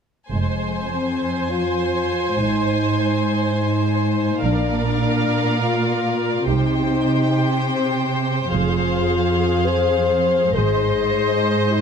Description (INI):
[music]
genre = cinematic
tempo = free time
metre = none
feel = none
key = F dorian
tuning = A4 = 443 Hz
[part]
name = warm symphonic violin section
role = melody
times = 0.3-11.8 s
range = Eb5 to Ab5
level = -30 LUFS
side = left 2 dB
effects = none
[part]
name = rich chamber violin section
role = second line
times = 0.3-11.8 s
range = C5 to D5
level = -27 LUFS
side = left 2 dB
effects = none
[part]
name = rich studio viola section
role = accompaniment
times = 0.3-11.8 s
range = G4 to C5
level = -26 LUFS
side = right 2 dB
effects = none
[part]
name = mellow French horn section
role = sustained chords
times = 0.3-11.8 s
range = Ab3 to C5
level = -22 LUFS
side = left 4 dB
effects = none
[part]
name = rich symphonic double bass section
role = bass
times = 0.3-11.1 s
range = F1 to C2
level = -24 LUFS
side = right 4 dB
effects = none
[part]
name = warm symphonic cello section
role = bass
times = 0.3-11.8 s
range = F2 to C3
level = -22 LUFS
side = right 3 dB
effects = none
[sound]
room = light reverb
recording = close, detailed microphones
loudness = -17 LUFS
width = side -6 dB against mid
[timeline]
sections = 0.3-11.8 A section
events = none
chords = 0.3 Fm; 2.4 Ab; 4.4 Bb; 6.5 Cm; 8.5 Fm; 10.6 Ab